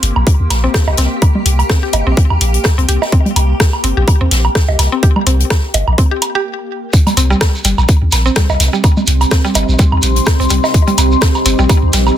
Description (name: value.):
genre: minimal techno.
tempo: 126 BPM.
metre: 4/4.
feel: swing 56% on 16ths.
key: C minor.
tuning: A4 = 440 Hz.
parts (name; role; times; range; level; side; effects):
punchy sub bass; bass; 0.0-12.1 s; G1 to Eb2; -13 LUFS; equal; sidechain pumping.
booming analog drum machine; drums; 0.0-12.0 s; hi-hat, rim click; -17 LUFS; left 1 dB; soft clipping on snare.
open jazz drum kit; drums; 0.0-12.1 s; hi-hat, snare drum; -23 LUFS; left 4 dB; sidechain pumping on hats, high-pass filter on hats, high-pass filter on snare, high-pass filter on room.
deep dark ambient pad; texture; 0.0-12.2 s; C4 to C6; -19 LUFS; right 1 dB; chorus, built-in reverb, sidechain pumping.
swarming drone; texture; 0.0-6.5 s; Bb3 to G4; -25 LUFS; equal; built-in reverb, sidechain pumping.
woodblock, bongos and congas; percussion; 0.2-12.2 s; none; -19 LUFS; right 3 dB; ping-pong delay.
electronic kick drum; drums; 0.3-11.8 s; none; -11 LUFS; equal; none.
mallet-like synth pluck; riff; 0.6-12.0 s; G3 to G4; -20 LUFS; equal; chorus, sidechain pumping, ping-pong delay.
shekere; percussion; 6.9-12.2 s; none; -23 LUFS; right 3 dB; none.
room: light reverb.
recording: dense, heavily limited modern master.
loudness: -10 LUFS.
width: side -11 dB against mid.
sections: 0.0-6.9 A section; 6.9-12.2 B section.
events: filter sweep on synth arpeggio sound 0.0-6.9; stop 6.5-6.9; drop 6.9-12.2.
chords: 0.0 C5; 6.9 Cm.